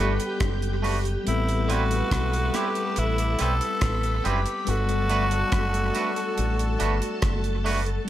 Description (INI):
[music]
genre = lovers rock reggae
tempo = 70 BPM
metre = 4/4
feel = straight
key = G major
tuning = A4 = 440 Hz
[part]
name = growling tenor saxophone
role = melody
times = 0.0-7.2 s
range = E4 to B4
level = -29 LUFS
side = equal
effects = tape echo
[part]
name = clear horn section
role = second line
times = 0.0-7.6 s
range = D3 to B4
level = -37 LUFS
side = left 4 dB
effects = none
[part]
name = string machine, full ensemble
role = second line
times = 0.0-8.1 s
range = G4 to B5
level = -33 LUFS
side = equal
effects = ensemble chorus, dub echo
[part]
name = mellow tine electric piano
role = accompaniment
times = 0.0-8.1 s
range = G3 to A4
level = -32 LUFS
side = left 4 dB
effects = medium stereo tremolo
[part]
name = twangy electric guitar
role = stabs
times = 0.0-7.8 s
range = G3 to B4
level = -30 LUFS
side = right 5 dB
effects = none
[part]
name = deep dub fingered electric bass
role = bass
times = 0.0-8.0 s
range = F#1 to B1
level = -26 LUFS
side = equal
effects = none
[part]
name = deep reggae drum kit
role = drums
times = 0.2-8.1 s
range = hi-hat, kick drum, rim click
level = -30 LUFS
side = equal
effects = gated reverb, dub echo
[sound]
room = studio ambience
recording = none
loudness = -22 LUFS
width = side -13 dB against mid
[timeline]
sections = 0.0-8.1 A section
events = none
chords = 0.0 Gmaj9; 1.3 Am9; 4.7 Gmaj9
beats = 0.41 | 1.26 2.11 2.97 3.82 | 4.67 5.53 6.38 7.23 | 8.09